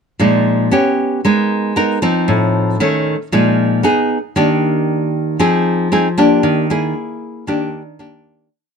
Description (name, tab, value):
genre	bossa nova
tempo	115 BPM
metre	4/4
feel	straight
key	Eb major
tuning	A4 = 440 Hz
part	nylon-string guitar	solo	0.2-8.5 s	A2 to Bb4	-13 LUFS	equal	none
room	light reverb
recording	close, detailed microphones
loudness	-13 LUFS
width	side -6 dB against mid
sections	0.2-8.5 A section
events	fade-out 6.4-8.5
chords	0.2 Bb7sus4; 0.7 Bsus2; 1.2 Abmadd9; 2.3 F7/A; 2.8 A; 3.3 Bb7sus4; 3.8 B6; 4.4 Ebmaj7; 5.4 Fm7; 6.4 Ebmaj7; 7.0 E; 7.5 Ebmaj7